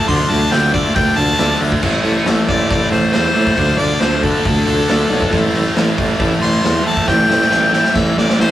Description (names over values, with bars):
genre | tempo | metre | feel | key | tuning
garage rock duo or trio | 137 BPM | 4/4 | straight | A minor | A4 = 440 Hz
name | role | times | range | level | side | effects
bright harmonica | melody | 0.0-8.5 s | A4 to C6 | -17 LUFS | left 1 dB | overdrive
thick fuzz guitar | riff | 0.0-8.5 s | A2 to D4 | -18 LUFS | left 1 dB | distortion
overdriven combo organ | sustained chords | 0.1-8.5 s | E4 to D5 | -26 LUFS | right 1 dB | none
clear tuba | bass | 0.1-8.5 s | A1 to A2 | -19 LUFS | equal | tube saturation
raw garage drum kit | drums | 0.1-8.5 s | crash cymbal, hi-hat, kick drum, snare drum | -19 LUFS | equal | none
room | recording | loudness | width
moderate studio reverb, RT60 0.6 s | rough rehearsal-room recording, tube saturation | -12 LUFS | side -13 dB against mid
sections
0.0-8.5 A section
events
drum fill 7.1-8.5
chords
0.1 Dm; 1.8 Am; 3.6 Dm; 5.3 Am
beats
| 0.07 0.51 0.95 1.39 | 1.82 2.26 2.70 3.13 | 3.57 4.01 4.45 4.88 | 5.32 5.76 6.20 6.63 | 7.07 7.51 7.95 8.38